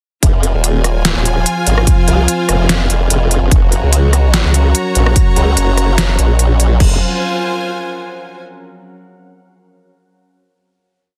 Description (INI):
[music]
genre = heavy wobble dubstep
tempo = 146 BPM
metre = 4/4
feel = swing 54% on 16ths, half-time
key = F phrygian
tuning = A4 = 440 Hz
[part]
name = evolving wavetable pad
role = sustained chords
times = 1.3-7.0 s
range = F3 to Gb5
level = -26 LUFS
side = equal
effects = phaser, built-in reverb, sidechain pumping
[part]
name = formant-sweep wobble bass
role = bass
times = 0.2-7.0 s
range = Eb1 to Db2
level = -15 LUFS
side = equal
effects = chorus, overdrive
[part]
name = dubstep drum kit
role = drums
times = 0.2-6.9 s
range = crash cymbal, hi-hat, rim click, snare drum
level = -19 LUFS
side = equal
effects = none
[part]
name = electronic kick drum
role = drums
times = 0.2-6.9 s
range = none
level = -14 LUFS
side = equal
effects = none
[part]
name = rich symphonic string section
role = texture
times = 0.2-8.4 s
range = F4 to Bb5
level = -23 LUFS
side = equal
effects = sidechain pumping
[sound]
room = digital ambience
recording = dense, heavily limited modern master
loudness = -13 LUFS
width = mono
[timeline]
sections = 0.2-6.8 drop; 6.8-8.4 final chord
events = drop 0.2-6.8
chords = 0.2 Fm; 3.5 Gb; 6.8 Fm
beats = | 0.23 0.64 1.05 1.46 | 1.87 2.28 2.69 3.10 | 3.52 3.93 4.34 4.75 | 5.16 5.57 5.98 6.39 | 6.80 7.21 7.62 8.04